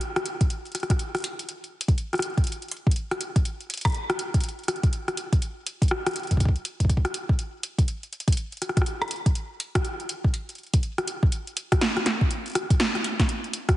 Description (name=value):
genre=IDM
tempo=122 BPM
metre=4/4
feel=swing 62% on 16ths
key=none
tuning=none
part: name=electro analog drum machine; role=drums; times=0.0-13.8 s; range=hi-hat, rim click, snare drum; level=-28 LUFS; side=equal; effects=tape echo
part: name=electronic kick drum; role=drums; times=0.4-13.8 s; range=none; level=-22 LUFS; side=equal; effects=none
room=moderate echo chamber reverb, RT60 1.3 s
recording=heavily compressed radio sound, multiband compression, nothing above 10.9 kHz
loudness=-23 LUFS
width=side -15 dB against mid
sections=0.0-11.3 A section; 11.3-13.8 B section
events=none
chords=none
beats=0.01 0.50 0.99 | 1.49 1.98 2.47 2.96 | 3.45 3.94 4.44 4.93 | 5.42 5.91 6.40 6.89 | 7.39 7.88 8.37 8.86 | 9.35 9.85 10.34 10.83 | 11.32 11.81 12.30 12.80 | 13.29